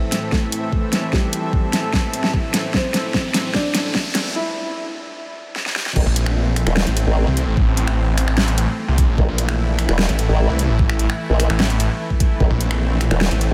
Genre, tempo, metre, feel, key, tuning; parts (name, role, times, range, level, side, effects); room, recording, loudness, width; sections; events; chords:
heavy wobble dubstep; 149 BPM; 4/4; half-time; A phrygian; A4 = 438 Hz
felt-muted upright piano; melody; 0.0-4.9 s; G3 to E5; -30 LUFS; equal; subtle chorus, low-pass filter, delay
supersaw pad; sustained chords; 0.0-13.5 s; A2 to E5; -29 LUFS; equal; sidechain pumping
riser; sound effects; 0.0-4.3 s; -36 LUFS; equal
warbly tape-like pad; texture; 0.0-4.3 s; E4 to A5; -36 LUFS; equal; chorus, built-in reverb, sidechain pumping
dubstep drum kit; drums; 0.1-13.5 s; crash cymbal, finger snaps, hi-hat, snare drum; -25 LUFS; equal; overdrive, small room ambience
electronic kick drum; drums; 0.3-12.5 s; -21 LUFS; equal; overdrive, small room ambience
formant-sweep wobble bass; bass; 6.0-13.5 s; E1 to Bb1; -20 LUFS; equal; chorus, overdrive
snarling distorted saw bass; bass; 6.1-13.5 s; A1 to C2; -21 LUFS; equal; distortion, overdrive
moderate huge ambient reverb, RT60 6.4 s; dreamy mix soaked in reverb, high-pass filter; -19 LUFS; mono
0.0-6.0 A section; 6.0-13.5 B section
build-up 0.0-6.0; drum fill 0.0-4.3, 5.6-6.0; riser 0.0-4.3; filter sweep 0.0-6.0; break 4.3-6.0; drop 6.0-13.5
0.0 Am